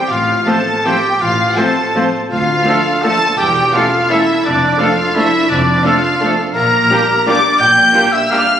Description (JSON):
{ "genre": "classical, orchestral ballroom waltz", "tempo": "168 BPM", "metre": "3/4", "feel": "uneven beats, rubato", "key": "unclear", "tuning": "A4 = 440 Hz", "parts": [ { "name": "bright symphonic violin section", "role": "melody", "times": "0.0-8.6 s", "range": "D5 to G6", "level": "-19 LUFS", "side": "left 2 dB", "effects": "none" }, { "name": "bright clarinet", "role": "second line", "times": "0.0-8.6 s", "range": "D4 to G5", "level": "-18 LUFS", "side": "left 1 dB", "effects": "none" }, { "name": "bright silver concert flute", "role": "second line", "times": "0.0-8.6 s", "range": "D5 to G6", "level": "-18 LUFS", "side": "equal", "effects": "none" }, { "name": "warm oboe", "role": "second line", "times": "0.0-8.6 s", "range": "D4 to G5", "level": "-19 LUFS", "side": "right 1 dB", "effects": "none" }, { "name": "rich symphonic cello section", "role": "bass", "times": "0.1-7.9 s", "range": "D2 to Bb2", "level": "-25 LUFS", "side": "right 1 dB", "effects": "none" }, { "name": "rich symphonic double bass section", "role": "bass", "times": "0.1-7.9 s", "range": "E1 to D2", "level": "-24 LUFS", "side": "right 1 dB", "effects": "none" }, { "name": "warm symphonic violin section", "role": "second line", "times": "0.5-8.4 s", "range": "C4 to F4", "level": "-27 LUFS", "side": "left 2 dB", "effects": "none" }, { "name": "clear symphonic viola section", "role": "accompaniment", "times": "0.5-8.4 s", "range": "F3 to Bb3", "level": "-22 LUFS", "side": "equal", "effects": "none" }, { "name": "bright trombone section", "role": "sustained chords", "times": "0.5-8.4 s", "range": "E3 to Bb3", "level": "-26 LUFS", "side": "right 2 dB", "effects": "none" }, { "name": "mellow French horn section", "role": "sustained chords", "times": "0.5-8.4 s", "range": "C4 to A4", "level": "-24 LUFS", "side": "left 2 dB", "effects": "none" }, { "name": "bright trumpet section", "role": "stabs", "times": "0.5-8.4 s", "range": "G4 to C5", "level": "-21 LUFS", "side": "right 1 dB", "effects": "none" } ], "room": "wet recital hall reverb, RT60 1.7 s", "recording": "recorded on a phone in the room, studio reverb, compression", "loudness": "-11 LUFS", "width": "side -9 dB against mid", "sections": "0.0-8.6 A section", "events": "none", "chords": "0.1 F/A; 2.3 Dm; 3.4 A7/E; 4.4 Dm/F; 6.5 Gm7/Bb", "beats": "| 0.11 0.47 0.85 | 1.21 1.57 1.94 | 2.30 2.66 3.03 | 3.38 3.73 4.10 | 4.45 4.79 5.15 | 5.50 5.84 6.21 | 6.55 6.90 7.27 | 7.61 7.95 8.31" }